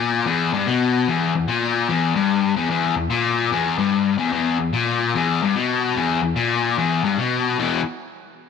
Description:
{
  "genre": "rock",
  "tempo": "147 BPM",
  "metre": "4/4",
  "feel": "swing 66% on 8ths",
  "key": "E minor",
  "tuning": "A4 = 442 Hz",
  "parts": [
    { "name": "overdriven electric guitar", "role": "solo", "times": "0.0-7.8 s", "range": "E2 to E3", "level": "-18 LUFS", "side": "left 6 dB", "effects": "none" }
  ],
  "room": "light reverb",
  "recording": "none",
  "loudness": "-18 LUFS",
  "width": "side -6 dB against mid",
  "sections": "0.0-7.6 A section",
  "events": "none",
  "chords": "0.0 Em; 7.6 E5"
}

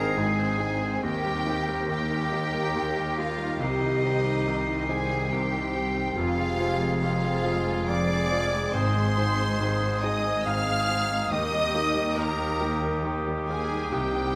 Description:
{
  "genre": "cinematic, emotional film score for orchestra",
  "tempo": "70 BPM",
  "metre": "3/4",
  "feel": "rubato",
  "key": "unclear",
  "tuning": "A4 = 440 Hz",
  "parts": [
    { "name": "rich studio violin section", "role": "melody", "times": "0.0-14.4 s", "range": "Eb5 to F6", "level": "-36 LUFS", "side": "equal", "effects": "none" },
    { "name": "clear clarinet", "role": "second line", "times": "0.0-14.4 s", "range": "Eb4 to F5", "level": "-36 LUFS", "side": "equal", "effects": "none" },
    { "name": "mellow oboe", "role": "second line", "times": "0.0-14.4 s", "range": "G4 to Ab4", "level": "-38 LUFS", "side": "equal", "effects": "none" },
    { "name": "mellow silver concert flute", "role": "second line", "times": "0.0-14.4 s", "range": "Eb6 to C7", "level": "-36 LUFS", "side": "equal", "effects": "none" },
    { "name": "rich studio violin section", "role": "second line", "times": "0.0-14.4 s", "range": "Eb4 to F5", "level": "-38 LUFS", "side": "equal", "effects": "none" },
    { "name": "clear grand piano", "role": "accompaniment", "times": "0.0-14.4 s", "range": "F1 to Bb4", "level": "-35 LUFS", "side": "equal", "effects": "none" },
    { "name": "rich studio viola section", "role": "accompaniment", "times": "0.0-14.4 s", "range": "Eb3 to C5", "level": "-39 LUFS", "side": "equal", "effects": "none" },
    { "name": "warm French horn section", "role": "sustained chords", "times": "0.0-14.4 s", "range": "Eb3 to Eb4", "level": "-38 LUFS", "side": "equal", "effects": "none" },
    { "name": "concert harp", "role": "arpeggios", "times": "0.0-14.4 s", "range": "F2 to Bb5", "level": "-36 LUFS", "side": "equal", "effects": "none" },
    { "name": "rich studio double bass section", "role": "bass", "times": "0.0-14.4 s", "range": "F1 to Eb2", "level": "-37 LUFS", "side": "equal", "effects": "none" },
    { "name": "warm studio cello section", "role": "bass", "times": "0.0-14.4 s", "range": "C2 to Ab2", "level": "-36 LUFS", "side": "equal", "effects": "none" }
  ],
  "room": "moderate scoring stage reverb, RT60 1.9 s",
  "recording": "close, detailed microphones",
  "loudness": "-26 LUFS",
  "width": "mono",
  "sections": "0.0-14.4 A section",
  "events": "none",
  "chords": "0.0 Ab; 1.0 Eb; 3.6 Cm; 6.2 Fm; 8.7 Ab; 11.3 Eb"
}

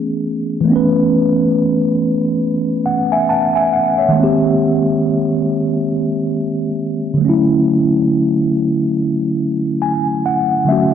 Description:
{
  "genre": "hip hop",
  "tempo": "69 BPM",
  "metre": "4/4",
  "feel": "swing 59% on 16ths",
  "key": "A major",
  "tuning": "A4 = 440 Hz",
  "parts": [
    { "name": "mellow tine electric piano", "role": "solo", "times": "0.0-10.9 s", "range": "D3 to A5", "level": "-13 LUFS", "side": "equal", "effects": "medium stereo tremolo, low-pass filter, slapback echo" }
  ],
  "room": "moderate plate reverb, RT60 3.2 s",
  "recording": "dark, warm production",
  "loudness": "-13 LUFS",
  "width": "side -8 dB against mid",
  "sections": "0.0-10.9 A section",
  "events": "tine electric piano fill 9.4-10.9",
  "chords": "0.0 Amaj9; 4.2 G#maj9; 7.2 Dmaj9"
}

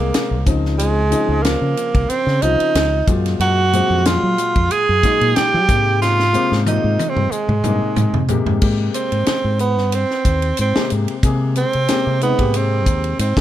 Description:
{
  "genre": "electric jazz fusion",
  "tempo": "92 BPM",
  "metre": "4/4",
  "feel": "swing 54% on 16ths",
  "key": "Ab major",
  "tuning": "A4 = 444 Hz",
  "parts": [
    { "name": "breathy tenor saxophone", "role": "melody", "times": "0.0-13.4 s", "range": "Ab3 to Ab4", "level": "-18 LUFS", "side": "right 3 dB", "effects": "none" },
    { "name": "warm grand piano", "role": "accompaniment", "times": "0.0-13.4 s", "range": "Bb2 to Ab4", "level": "-24 LUFS", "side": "left 6 dB", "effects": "none" },
    { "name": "fingered electric bass", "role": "bass", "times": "0.0-13.4 s", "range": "C2 to Gb3", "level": "-19 LUFS", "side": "equal", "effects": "none" },
    { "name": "tight funk drum kit", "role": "drums", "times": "0.1-13.4 s", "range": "crash cymbal, hi-hat, kick drum, ride cymbal, snare drum, toms", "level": "-21 LUFS", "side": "equal", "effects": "none" }
  ],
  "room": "light reverb",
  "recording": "none",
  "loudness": "-14 LUFS",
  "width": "side -12 dB against mid",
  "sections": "0.0-8.6 A section; 8.6-13.4 B section",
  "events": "drum fill 6.0-8.6; tenor saxophone solo 8.6-13.4",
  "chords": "0.5 Dbmaj9; 3.1 Gbmaj9; 5.7 Abmaj9"
}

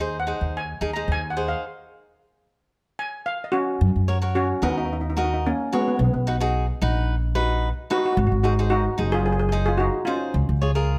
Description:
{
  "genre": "calypso",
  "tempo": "110 BPM",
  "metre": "4/4",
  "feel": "straight",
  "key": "F# major",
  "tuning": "A4 = 440 Hz",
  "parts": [
    { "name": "steel pan", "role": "melody", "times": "0.0-11.0 s", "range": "G#3 to A#5", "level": "-27 LUFS", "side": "equal", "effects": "none" },
    { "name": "cavaquinho", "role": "accompaniment", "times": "0.0-11.0 s", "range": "D#4 to D#5", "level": "-30 LUFS", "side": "equal", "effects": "none" },
    { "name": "upright bass", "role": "bass", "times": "0.0-11.0 s", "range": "F#1 to F#2", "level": "-25 LUFS", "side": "equal", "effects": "none" }
  ],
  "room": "light reverb",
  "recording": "close, detailed microphones",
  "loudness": "-23 LUFS",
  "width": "mono",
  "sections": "0.0-3.8 A section; 3.8-11.0 B section",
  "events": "steel pan solo 0.0-3.8; stop 1.6-3.8",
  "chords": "0.0 G#/D#; 1.6 N.C.; 3.8 F#; 6.0 Bmaj7; 8.2 G#7; 10.3 C#"
}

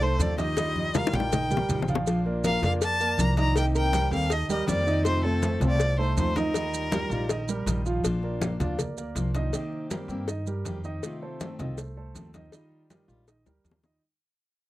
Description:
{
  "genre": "latin, Cuban son and guajira",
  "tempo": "161 BPM",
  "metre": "4/4",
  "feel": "straight",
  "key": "Bb major",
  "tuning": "A4 = 441 Hz",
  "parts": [
    { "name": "rich violin", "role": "melody", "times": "0.0-7.7 s", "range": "A4 to Bb5", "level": "-29 LUFS", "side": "left 1 dB", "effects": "none" },
    { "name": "flamenco guitar", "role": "second line", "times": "0.0-7.7 s", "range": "C4 to D5", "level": "-37 LUFS", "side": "right 1 dB", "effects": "none" },
    { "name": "dark baby grand piano", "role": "arpeggios", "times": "0.0-14.0 s", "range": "Eb3 to F5", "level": "-32 LUFS", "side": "right 3 dB", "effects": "none" },
    { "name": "upright bass", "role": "bass", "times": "0.0-14.0 s", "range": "Bb1 to G2", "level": "-29 LUFS", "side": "equal", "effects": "none" },
    { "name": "congas", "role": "percussion", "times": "0.0-14.0 s", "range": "none", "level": "-32 LUFS", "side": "left 1 dB", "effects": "none" },
    { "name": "picked steel-string acoustic guitar", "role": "accompaniment", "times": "0.2-14.0 s", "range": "C3 to G4", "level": "-33 LUFS", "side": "left 2 dB", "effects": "none" },
    { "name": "cowbell and bongos", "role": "percussion", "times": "0.2-13.9 s", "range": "none", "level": "-32 LUFS", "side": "left 5 dB", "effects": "none" },
    { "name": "maracas", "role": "percussion", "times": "0.2-14.0 s", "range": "none", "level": "-38 LUFS", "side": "right 8 dB", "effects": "none" }
  ],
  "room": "little or no reverb",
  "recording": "dry, close 1970s-style studio recording",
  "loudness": "-24 LUFS",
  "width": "side -16 dB against mid",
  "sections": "0.0-8.0 A section; 8.0-14.0 B section",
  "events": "drum fill 0.6-2.1, 13.5-14.0; fade-out 8.0-14.0",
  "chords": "0.0 F7; 0.6 Ebadd9; 2.1 Bb; 3.6 Cm7; 5.1 F7; 6.5 Ebadd9; 8.0 Bb; 9.5 Cm7; 11.0 F7; 12.5 Ebadd9"
}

